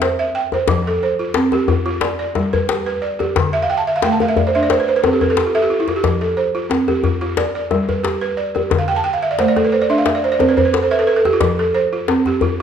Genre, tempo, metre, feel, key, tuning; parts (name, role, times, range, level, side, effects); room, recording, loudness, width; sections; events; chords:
west african traditional, West African string and xylophone music; 90 BPM; 4/4; swing 53% on 16ths; F lydian; A4 = 440 Hz
balafon; arpeggios; 0.0-12.6 s; D3 to A5; -16 LUFS; right 3 dB
djembe; percussion; 0.0-12.6 s; -20 LUFS; left 5 dB
wet recital hall reverb, RT60 1.6 s; -15 LUFS; side -8 dB against mid
0.0-12.6 A section
balafon fill 3.5-6.0, 8.8-11.4
0.0 C; 0.7 F; 2.0 G; 3.4 D5; 4.7 C; 6.0 F; 7.4 G; 8.7 D5; 10.1 C; 11.4 F